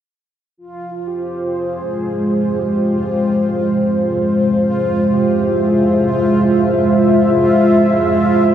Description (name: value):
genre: dark ambient drone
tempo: 58 BPM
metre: 4/4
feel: straight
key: F harmonic minor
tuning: A4 = 441 Hz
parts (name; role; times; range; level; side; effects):
- mellow horn-like synth lead; melody; 0.6-6.7 s; F4 to Bb4; -29 LUFS; left 2 dB; lush chorus, diffuse ambient delay
- dark analog pad; sustained chords; 0.6-8.5 s; Ab3 to E5; -13 LUFS; equal; chorus
- swarming drone; drone; 1.5-8.5 s; F2 to C3; -29 LUFS; left 2 dB; built-in reverb
- bubbling stepped-filter texture; texture; 0.8-8.5 s; F4; -27 LUFS; left 3 dB; chorus, built-in reverb
room: wet huge ambient reverb, RT60 7.8 s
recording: dark, warm production, nothing above 10.7 kHz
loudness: -13 LUFS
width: side -10 dB against mid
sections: 0.6-8.5 A section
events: fade-in on synth drone 0.6-8.5; fade-in on soft synth lead 0.6-8.5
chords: 0.6 Fm